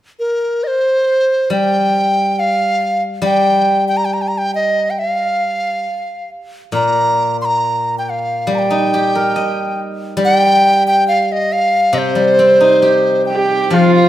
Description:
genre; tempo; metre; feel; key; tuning
chinese traditional, Chinese chamber ensemble; 69 BPM; 2/4; rubato; unclear; A4 = 440 Hz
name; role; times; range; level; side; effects
large dizi; melody; 0.2-14.1 s; Bb4 to C6; -14 LUFS; equal; none
steel-string zither; accompaniment; 1.5-14.1 s; Bb2 to Eb5; -17 LUFS; equal; none
bright horsehead fiddle; second line; 13.3-14.1 s; F4 to G4; -14 LUFS; right 3 dB; none
room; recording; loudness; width
wet recital hall reverb, RT60 1.7 s; none; -12 LUFS; side -13 dB against mid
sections
0.0-13.7 A section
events
none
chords
none

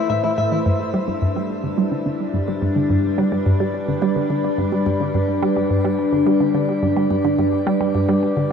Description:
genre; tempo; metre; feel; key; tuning
ambient, sequencer-driven space music; 107 BPM; 4/4; straight; unclear; A4 = 440 Hz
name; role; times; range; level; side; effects
evolving wavetable pad; sustained chords; 0.0-8.5 s; G3 to D5; -20 LUFS; left 2 dB; chorus, built-in reverb, shimmer reverb
electric guitar at the edge of break-up; arpeggios; 0.0-0.6 s; E4 to E5; -26 LUFS; left 4 dB; auto-pan, analog delay, shimmer reverb
resonant blip pluck; riff; 0.1-8.4 s; G2 to A3; -20 LUFS; right 2 dB; phaser, analog delay, shimmer reverb
room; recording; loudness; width
wet huge ambient reverb, RT60 7.6 s; none; -17 LUFS; side -7 dB against mid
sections
0.7-8.5 A section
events
none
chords
0.0 Amadd9; 0.7 G

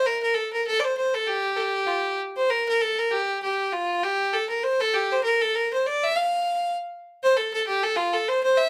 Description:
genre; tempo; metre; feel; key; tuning
celtic folk; 198 BPM; 4/4; swing 56% on 8ths; G dorian; A4 = 440 Hz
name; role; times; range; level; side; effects
clear fiddle; solo; 0.0-8.7 s; F4 to F5; -24 LUFS; equal; none
room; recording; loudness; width
light reverb; close, detailed microphones; -24 LUFS; mono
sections
0.0-2.5 A section; 2.5-8.7 A section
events
none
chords
none

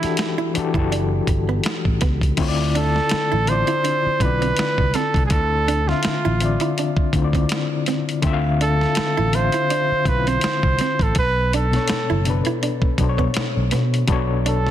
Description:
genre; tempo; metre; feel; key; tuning
R&B, neo-soul; 82 BPM; 4/4; swing 55% on 16ths; unclear; A4 = 441 Hz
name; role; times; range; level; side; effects
warm flugelhorn; melody; 0.0-14.7 s; E4 to C5; -22 LUFS; right 2 dB; tape echo
overdriven reed electric piano; accompaniment; 0.0-14.7 s; B2 to F5; -23 LUFS; left 5 dB; fast tremolo
fingered electric bass; bass; 0.0-14.7 s; F#1 to B2; -22 LUFS; equal; none
boom bap sampler-style drum kit; drums; 0.0-14.7 s; crash cymbal, hi-hat, kick drum, snare drum; -23 LUFS; equal; none
hollow-body jazz guitar; second line; 0.4-14.6 s; B3 to E4; -28 LUFS; right 8 dB; none
room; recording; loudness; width
light reverb; dense, heavily limited modern master; -17 LUFS; side -11 dB against mid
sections
0.0-2.4 A section; 2.4-14.7 B section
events
none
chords
0.0 Em11; 2.4 Dm9; 11.2 Bm9

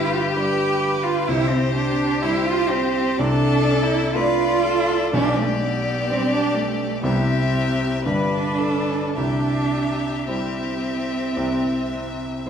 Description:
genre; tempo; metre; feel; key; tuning
classical, slow romantic movement for piano quartet; 52-65 BPM; 4/4; rubato; C major; A4 = 440 Hz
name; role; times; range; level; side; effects
rich violin; melody; 0.0-12.5 s; G4 to B4; -27 LUFS; left 5 dB; none
rich cello; second line; 0.0-12.5 s; A3 to G4; -22 LUFS; right 3 dB; none
rich violin; second line; 0.0-12.5 s; B4 to E5; -29 LUFS; left 3 dB; none
warm grand piano; accompaniment; 0.0-12.5 s; G1 to D5; -24 LUFS; equal; none
room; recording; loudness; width
wet recital hall reverb, RT60 1.6 s; heard from further back in the room; -19 LUFS; side -8 dB against mid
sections
0.0-12.5 A section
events
none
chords
0.0 G; 1.3 C; 3.2 Dm7/C; 5.1 G/B; 7.1 C; 8.1 G; 9.2 C

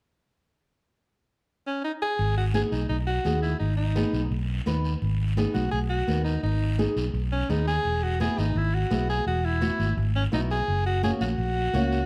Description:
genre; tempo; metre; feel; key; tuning
latin, cumbia; 170 BPM; 4/4; straight; G# minor; A4 = 440 Hz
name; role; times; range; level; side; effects
bright alto saxophone; melody; 1.7-12.1 s; C#4 to G#4; -31 LUFS; equal; none
fingered electric bass; bass; 2.2-12.0 s; E1 to D#2; -28 LUFS; equal; none
guiro; percussion; 2.2-12.1 s; none; -45 LUFS; equal; none
flamenco guitar; accompaniment; 2.5-12.0 s; A#3 to B4; -34 LUFS; equal; none
congas; percussion; 2.5-11.9 s; none; -36 LUFS; equal; none
room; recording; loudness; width
moderate large studio reverb, RT60 1.3 s; dark, warm production; -26 LUFS; mono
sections
0.8-2.2 A section; 2.2-12.1 B section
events
none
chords
0.8 N.C.; 2.2 G#m; 7.8 Eadd9; 10.7 F#

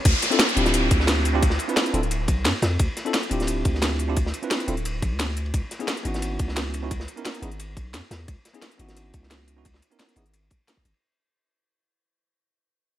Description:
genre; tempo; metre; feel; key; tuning
liquid drum and bass; 175 BPM; 4/4; straight; unclear; A4 = 439 Hz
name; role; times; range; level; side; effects
long sustained 808-style bass; bass; 0.1-10.9 s; D1 to G2; -26 LUFS; equal; none
crunchy breakbeat drum kit; drums; 0.1-11.0 s; ride cymbal, snare drum; -31 LUFS; equal; high-pass filter on cymbals, studio reverb, high-pass filter on snare, high-pass filter on room
drum and bass drum kit; drums; 0.1-10.9 s; crash cymbal, hi-hat, snare drum; -26 LUFS; equal; studio reverb
electronic kick drum; drums; 0.1-10.8 s; none; -23 LUFS; equal; studio reverb
downlifter; sound effects; 0.1-2.8 s; none; -27 LUFS; equal; none
bell-like tine electric piano; accompaniment; 0.3-10.2 s; B3 to B4; -28 LUFS; moving between left 5 dB and right 6 dB; auto-pan, tape echo
room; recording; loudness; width
light reverb; none; -21 LUFS; side -12 dB against mid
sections
0.1-11.0 A section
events
fade-out 0.1-11.0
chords
0.1 Dm9; 5.5 C#m9

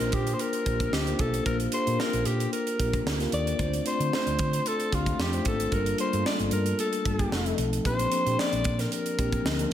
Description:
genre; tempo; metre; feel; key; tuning
polished 1980s jazz-funk pop; 113 BPM; 4/4; swing 54% on 16ths; Bb major; A4 = 440 Hz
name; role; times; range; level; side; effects
growling alto saxophone; melody; 0.0-9.7 s; F4 to D5; -30 LUFS; left 1 dB; slapback echo
mellow tine electric piano; accompaniment; 0.0-9.7 s; F3 to D5; -30 LUFS; left 2 dB; slow stereo tremolo, wide subtle chorus, slapback echo
hollow-body short-scale fingered electric bass; bass; 0.0-9.6 s; F1 to D3; -30 LUFS; right 1 dB; none
crisp fusion drum kit; drums; 0.0-9.7 s; hi-hat, kick drum, snare drum; -30 LUFS; right 1 dB; none
room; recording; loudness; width
wet recital hall reverb, RT60 1.5 s, small room ambience; big arena sound; -24 LUFS; side -11 dB against mid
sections
0.0-9.7 A section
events
none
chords
0.0 Bb69; 3.6 Dm7; 5.7 Gm9; 7.3 F7; 7.9 Bb69

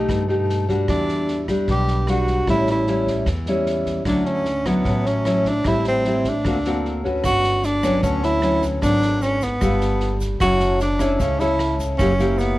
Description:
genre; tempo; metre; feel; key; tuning
bossa nova; 151 BPM; 4/4; straight; D major; A4 = 438 Hz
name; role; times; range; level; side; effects
breathy tenor saxophone; melody; 0.0-12.6 s; B3 to G4; -21 LUFS; right 1 dB; none
nylon-string guitar; accompaniment; 0.0-12.6 s; G2 to B4; -22 LUFS; left 1 dB; none
upright bass; bass; 0.0-12.6 s; F#1 to G2; -24 LUFS; equal; none
swinging big-band drum kit; drums; 0.1-12.4 s; kick drum, rim click, snare drum; -29 LUFS; equal; none
egg shaker; percussion; 7.2-12.6 s; none; -44 LUFS; right 3 dB; none
room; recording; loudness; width
little or no reverb; worn, warbling old tape, cassette tape, warbly pitch drift; -18 LUFS; side -17 dB against mid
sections
0.0-7.2 A section; 7.2-12.6 B section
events
none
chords
0.0 B7alt; 0.9 Em9; 2.5 A7; 4.1 Dmaj9; 5.7 Am7; 6.4 Daug7; 7.2 Gmaj7#11; 8.8 G#m7b5; 9.6 G9; 10.4 F#m7; 12.0 F#7b9

